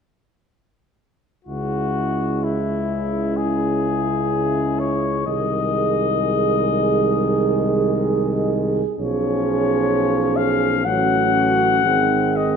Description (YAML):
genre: classical, hymn-like piece for brass band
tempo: 64 BPM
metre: 4/4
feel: rubato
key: C# minor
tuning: A4 = 440 Hz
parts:
  - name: clear flugelhorn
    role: melody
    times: 1.4-12.6 s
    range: E4 to F#5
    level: -22 LUFS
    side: left 8 dB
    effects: none
  - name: warm French horn section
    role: second line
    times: 1.5-12.6 s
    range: E4 to G#4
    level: -24 LUFS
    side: right 7 dB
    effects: none
  - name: clear trombone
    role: accompaniment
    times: 1.5-12.6 s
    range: C#3 to F#3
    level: -27 LUFS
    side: right 4 dB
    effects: none
  - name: clear trombone section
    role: accompaniment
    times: 1.5-12.6 s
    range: G#3 to C#4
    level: -26 LUFS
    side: left 4 dB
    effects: none
  - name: warm tuba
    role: bass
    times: 1.5-12.6 s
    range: G#1 to C#2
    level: -24 LUFS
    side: equal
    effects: none
room: moderate scoring stage reverb, RT60 1.6 s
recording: dark, warm production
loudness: -17 LUFS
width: side -6 dB against mid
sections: 1.5-12.6 A section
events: none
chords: 1.5 C#m; 5.3 G#/B#; 9.0 C#7/B; 10.9 F#m/A; 11.8 G#7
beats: | 1.47 2.43 3.37 4.32 | 5.27 6.20 7.14 8.06 | 8.99 9.92 10.86 11.85